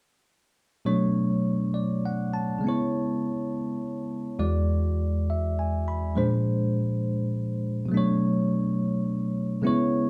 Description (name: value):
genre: jazz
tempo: 68 BPM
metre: 4/4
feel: swing 68% on 8ths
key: unclear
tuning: A4 = 438 Hz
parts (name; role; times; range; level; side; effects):
- bell-like tine electric piano; accompaniment; 0.9-10.1 s; E2 to B5; -26 LUFS; equal; none
room: wet small room reverb, RT60 0.6 s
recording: band playing live in one room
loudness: -27 LUFS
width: mono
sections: 0.8-10.1 A section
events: none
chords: 0.8 Bm7; 2.6 C#m7; 4.4 E7; 6.2 Bb7; 7.9 Bm7